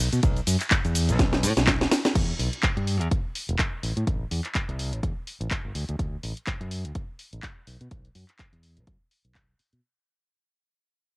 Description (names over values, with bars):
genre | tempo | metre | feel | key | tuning
filtered disco house | 125 BPM | 4/4 | swing 57% on 16ths | E minor | A4 = 441 Hz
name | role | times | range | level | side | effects
modern bright fingered electric bass | bass | 0.0-9.8 s | E1 to B2 | -26 LUFS | equal | sidechain pumping, low-pass filter
house drum kit | drums | 0.1-9.8 s | crash cymbal, handclaps, hi-hat, ride cymbal, shaker, snare drum | -26 LUFS | equal | cassette tape
electronic kick drum | drums | 0.2-9.5 s | none | -26 LUFS | equal | cassette tape
room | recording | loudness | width
little or no reverb | home recording on cassette | -23 LUFS | side -28 dB against mid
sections
0.0-2.2 A section; 2.2-9.8 B section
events
drop 0.0-2.2; drum fill 1.2-2.2; fade-out 2.2-9.8; filter sweep on fingered electric bass 2.2-9.8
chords
none